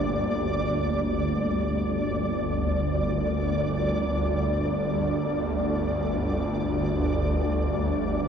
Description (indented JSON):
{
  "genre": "dark ambient drone",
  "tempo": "free time",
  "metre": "none",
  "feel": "none",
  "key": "G minor",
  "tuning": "A4 = 440 Hz",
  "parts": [
    { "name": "deep dark ambient pad", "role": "sustained chords", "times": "0.0-0.9 s", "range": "Bb3 to D5", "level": "-34 LUFS", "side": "equal", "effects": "chorus, built-in reverb" },
    { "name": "swarming drone", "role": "drone", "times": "0.0-8.3 s", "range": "G1 to D2", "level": "-25 LUFS", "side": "equal", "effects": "built-in reverb" },
    { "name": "flickering grainy texture", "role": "texture", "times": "0.0-8.3 s", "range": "D5", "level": "-30 LUFS", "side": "right 1 dB", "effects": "built-in reverb" },
    { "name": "taiko ensemble", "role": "percussion", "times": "0.9-1.1 s", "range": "none", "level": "barely audible", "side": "none", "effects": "none" },
    { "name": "gamelan-type bronze metallophone", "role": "arpeggios", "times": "1.5-8.3 s", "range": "none", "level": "barely audible", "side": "none", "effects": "none" }
  ],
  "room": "wet huge ambient reverb, RT60 7.7 s",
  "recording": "worn, warbling old tape, cassette tape, warbly pitch drift, nothing above 11.0 kHz",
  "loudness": "-24 LUFS",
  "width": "side -7 dB against mid",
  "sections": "0.9-8.3 A section",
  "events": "none",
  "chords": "0.0 Gm"
}